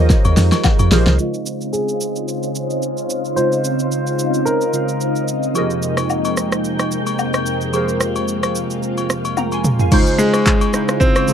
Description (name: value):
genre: amapiano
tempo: 110 BPM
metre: 4/4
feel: swing 55% on 16ths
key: unclear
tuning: A4 = 440 Hz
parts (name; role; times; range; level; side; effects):
- glassy digital keys; accompaniment; 0.0-11.3 s; Db3 to C6; -23 LUFS; right 2 dB; chorus, low-pass filter
- ensemble organ-string; sustained chords; 0.0-11.3 s; F2 to G5; -21 LUFS; equal; phaser, ensemble chorus, low-pass filter
- deep log drum bass; bass; 0.0-1.2 s; Bb1 to F2; -14 LUFS; equal; none
- deep house drum kit; drums; 0.1-11.3 s; crash cymbal, handclaps, hi-hat, kick drum, rim click, shaker, snare drum, toms; -18 LUFS; equal; none
- agogo bells and woodblock; percussion; 0.2-0.9, 5.6-11.3 s; none; -26 LUFS; left 9 dB; none
- clear grand piano; melody; 1.7-5.2, 10.2-11.3 s; Ab3 to C5; -20 LUFS; equal; low-pass filter
room: light reverb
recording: dark, warm production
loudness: -15 LUFS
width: side -8 dB against mid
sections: 0.0-1.2 A section; 1.2-9.9 B section; 9.9-11.3 C section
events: drop 0.0-1.2; drum fill 0.1-1.2, 9.4-9.9; filter sweep 1.2-9.9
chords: 0.0 Fm11; 1.2 Dbmaj9; 5.6 Fm11; 9.9 Dbmaj9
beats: 0.10 0.64 | 1.19 1.74 2.28 2.83 | 3.37 3.92 4.46 5.01 | 5.55 6.10 6.64 7.19 | 7.74 8.28 8.83 9.37 | 9.92 10.46 11.01